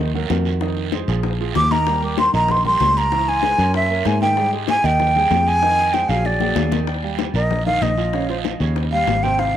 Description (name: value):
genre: Afro-Cuban jazz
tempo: 192 BPM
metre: 4/4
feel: straight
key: Eb major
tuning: A4 = 440 Hz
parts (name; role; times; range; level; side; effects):
- clear concert grand piano; accompaniment; 0.0-9.6 s; C3 to Bb5; -26 LUFS; right 10 dB; cassette tape
- fingered electric bass; bass; 0.0-9.6 s; Ab1 to Ab2; -22 LUFS; equal; none
- congas; percussion; 0.1-9.5 s; none; -28 LUFS; left 14 dB; none
- bongos; percussion; 0.3-9.5 s; none; -30 LUFS; left 16 dB; none
- guiro; percussion; 0.3-9.6 s; none; -32 LUFS; right 11 dB; none
- breathy jazz flute; melody; 1.6-9.6 s; C5 to D6; -18 LUFS; equal; cassette tape, tape echo
room: light reverb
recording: home recording on cassette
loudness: -16 LUFS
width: side -10 dB against mid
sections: 0.0-6.9 A section; 6.9-9.6 B section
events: drum fill 6.2-6.9; flute solo 6.9-9.6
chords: 0.0 Bmaj7 (rootless); 0.6 Fm7; 1.2 Bb5; 1.9 Eb; 3.1 Dbm7; 3.7 Gb9; 4.4 Ab5; 5.6 Fm7; 6.2 Bbaug7; 6.9 Ebadd9; 8.1 Bbm; 8.8 Eb13